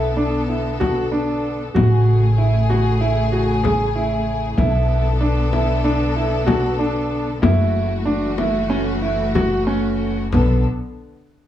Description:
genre	contemporary instrumental, chamber music in an uneven meter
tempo	189 BPM (eighths)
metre	9/8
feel	straight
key	B dorian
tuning	A4 = 440 Hz
part	rich studio string section	sustained chords	0.0-10.6 s	C#3 to A4	-24 LUFS	left 3 dB	none
part	warm grand piano	arpeggios	0.0-10.6 s	B3 to G#4	-22 LUFS	right 2 dB	none
part	upright bass	bass	0.0-10.6 s	F#1 to B1	-20 LUFS	equal	none
part	frame drum	percussion	0.8-10.6 s	none	-21 LUFS	left 5 dB	none
room	light reverb, small room ambience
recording	echo-heavy mix, cassette tape, small room reverb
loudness	-16 LUFS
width	side -11 dB against mid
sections	0.0-10.3 A section; 10.3-11.5 B section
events	none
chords	0.0 Bm7; 1.8 Amaj7; 4.6 Bm7; 7.4 F#m7; 10.3 Bm7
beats	0.17 0.49 0.81 1.12 1.44 | 1.75 2.07 2.38 2.70 3.02 3.33 3.65 3.96 4.27 | 4.58 4.90 5.21 5.53 5.85 6.17 6.48 6.80 7.12 | 7.43 7.75 8.07 8.39 8.71 9.03 9.35 9.68 10.01 | 10.33

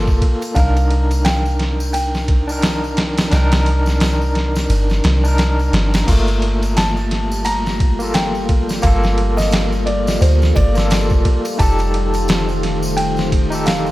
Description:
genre	trip hop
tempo	87 BPM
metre	4/4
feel	swing 59% on 16ths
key	G minor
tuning	A4 = 440 Hz
part	overdriven tine electric piano	accompaniment	0.0-13.9 s	A3 to Bb4	-22 LUFS	left 1 dB	tremolo, tape echo
part	soft 808-style bass	bass	0.0-13.9 s	F1 to D2	-18 LUFS	equal	tube saturation
part	trip hop sampler-style drum kit	drums	0.1-13.9 s	crash cymbal, kick drum, ride cymbal, snare drum	-19 LUFS	equal	none
part	tambourine and triangle	percussion	0.1-13.9 s	none	-33 LUFS	left 2 dB	none
part	felt-muted upright piano	melody	0.6-13.9 s	C5 to Bb5	-24 LUFS	equal	tape echo
part	deep dark ambient pad	sustained chords	7.0-13.9 s	Eb3 to F5	-24 LUFS	left 1 dB	chorus, built-in reverb
room	little or no reverb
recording	echo-heavy mix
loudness	-14 LUFS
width	side -17 dB against mid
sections	0.0-6.1 A section; 6.1-13.9 B section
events	none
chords	0.0 Gm9; 0.6 Cm9; 6.1 Gm7; 11.6 F7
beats	| 0.56 1.25 1.94 2.63 | 3.32 4.01 4.70 5.39 | 6.08 6.77 7.46 8.15 | 8.84 9.53 10.22 10.91 | 11.60 12.29 12.98 13.67

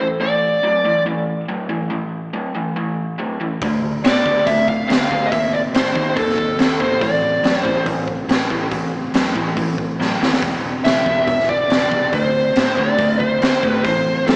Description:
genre	blues rock power trio and southern rock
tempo	141 BPM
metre	4/4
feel	straight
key	A minor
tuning	A4 = 441 Hz
part	smooth overdriven lead guitar	melody	0.0-1.0, 4.0-7.8, 10.8-14.3 s	A4 to F5	-20 LUFS	equal	slapback echo
part	raw garage guitar	riff	0.0-14.4 s	E2 to C4	-24 LUFS	equal	overdrive, spring reverb, slapback echo
part	vintage muted picked electric bass	bass	3.6-14.4 s	E1 to D#3	-33 LUFS	equal	none
part	raw garage drum kit	drums	3.6-14.4 s	hi-hat, kick drum, snare drum	-22 LUFS	equal	none
room	wet lush hall reverb, RT60 1.9 s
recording	big arena sound, small speaker sound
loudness	-18 LUFS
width	mono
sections	0.0-14.4 A section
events	drum fill 10.0-10.4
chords	0.0 A5; 3.6 D5; 5.3 D#5; 7.0 A5; 10.4 E5; 12.1 D5; 13.8 Am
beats	| 0.21 0.64 1.06 1.49 | 1.92 2.34 2.77 3.19 | 3.62 4.05 4.47 4.90 | 5.32 5.75 6.17 6.60 | 7.02 7.45 7.87 8.30 | 8.72 9.15 9.58 10.00 | 10.43 10.86 11.28 11.71 | 12.14 12.56 12.99 13.42 | 13.85 14.28

